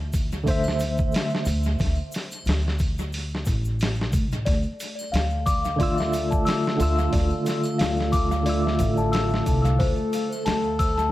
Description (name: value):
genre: trip hop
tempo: 90 BPM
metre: 4/4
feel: swing 57% on 16ths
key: D minor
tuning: A4 = 439 Hz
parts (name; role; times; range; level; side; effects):
- upright bass; bass; 0.0-11.1 s; A1 to D2; -26 LUFS; equal; tube saturation
- boom bap sampler-style drum kit; drums; 0.1-11.0 s; hi-hat, kick drum, snare drum; -26 LUFS; equal; tape echo
- egg shaker and triangle; percussion; 0.1-11.1 s; none; -44 LUFS; left 2 dB; tape echo
- bright tine electric piano; accompaniment; 0.4-1.4, 5.8-11.1 s; D3 to E6; -26 LUFS; equal; medium stereo tremolo, vintage 12-bit sampler grit, tape echo
- warbly tape-like pad; sustained chords; 4.9-11.1 s; A3 to A4; -30 LUFS; equal; chorus, built-in reverb, phaser
- celesta; arpeggios; 4.5-11.1 s; C5 to E6; -28 LUFS; left 2 dB; tape echo
room: studio reverb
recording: echo-heavy mix, vinyl crackle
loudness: -21 LUFS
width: side -15 dB against mid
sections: 0.0-11.1 A section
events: none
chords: 0.0 Am/D; 4.5 Dmadd9; 9.8 A5/D